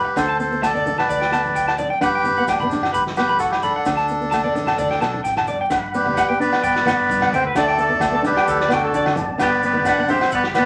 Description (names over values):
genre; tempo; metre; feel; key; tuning
highlife guitar band; 130 BPM; 4/4; straight; G major; A4 = 440 Hz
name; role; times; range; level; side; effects
melodica; melody; 0.0-10.7 s; D4 to F#5; -23 LUFS; equal; none
fingered electric bass; bass; 0.0-10.7 s; G1 to D3; -35 LUFS; equal; none
electric guitar at the edge of break-up; arpeggios; 0.1-10.6 s; G4 to B5; -25 LUFS; equal; none
nylon-string guitar; accompaniment; 0.2-10.7 s; A3 to D4; -29 LUFS; equal; none
vintage drum kit; drums; 0.2-10.7 s; kick drum, snare drum; -34 LUFS; equal; none
agogo bells; percussion; 0.2-10.7 s; none; -28 LUFS; equal; none
maracas; percussion; 0.2-10.7 s; none; -46 LUFS; equal; none
congas; percussion; 0.7-10.7 s; none; -35 LUFS; equal; none
tonewheel organ; sustained chords; 5.7-10.7 s; D5 to B5; -31 LUFS; equal; none
breathy alto saxophone; second line; 6.0-10.7 s; D3 to D4; -28 LUFS; equal; none
room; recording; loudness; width
moderate studio reverb, RT60 0.7 s; vinyl crackle; -19 LUFS; mono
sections
0.0-5.7 A section; 5.7-10.7 B section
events
none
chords
0.2 Dsus4; 2.0 Gmaj7; 3.9 Dsus4; 5.7 Gmaj7; 7.6 Dsus4; 9.4 Gmaj7